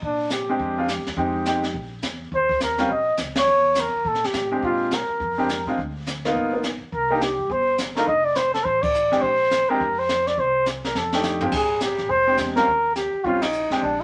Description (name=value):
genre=jazz, small-group swing and bop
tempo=209 BPM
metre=4/4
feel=swing 61% on 8ths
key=Bb mixolydian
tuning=A4 = 440 Hz
part: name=trumpet with bucket mute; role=melody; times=0.0-14.0 s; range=D4 to Eb5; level=-23 LUFS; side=equal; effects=none
part: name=upright bass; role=bass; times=0.0-14.0 s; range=F1 to Bb2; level=-38 LUFS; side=equal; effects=none
part: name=jazz brush drum kit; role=drums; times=0.0-14.0 s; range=brushed snare drum, crash cymbal, hi-hat, kick drum, ride cymbal, snare drum, toms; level=-32 LUFS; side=equal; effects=none
part: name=clear baby grand piano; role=accompaniment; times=0.5-13.8 s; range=Bb2 to G4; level=-26 LUFS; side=equal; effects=none
room=moderate studio reverb, RT60 0.6 s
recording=none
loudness=-22 LUFS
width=mono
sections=0.0-11.5 A section; 11.5-14.0 A section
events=band accent 3.3, 8.8, 13.4; drum fill 10.9-11.5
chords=0.0 Bb13; 1.2 Fm7; 1.7 N.C.; 2.3 Eb7(no3); 3.5 Edim7; 4.6 Bb13; 5.8 Dm6; 6.3 G7alt; 6.9 Cm7; 8.1 F6; 9.2 Bbsus2; 10.4 N.C.; 10.9 F13; 11.5 Bb13; 12.7 Eb13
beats=| 0.02 0.31 0.59 0.88 | 1.17 1.46 1.75 2.03 | 2.32 2.61 2.90 3.18 | 3.47 3.76 4.05 4.33 | 4.62 4.91 5.20 5.49 | 5.77 6.06 6.35 6.64 | 6.92 7.21 7.50 7.79 | 8.07 8.36 8.65 8.94 | 9.22 9.51 9.80 10.09 | 10.37 10.66 10.95 11.23 | 11.52 11.81 12.10 12.38 | 12.67 12.96 13.24 13.53 | 13.81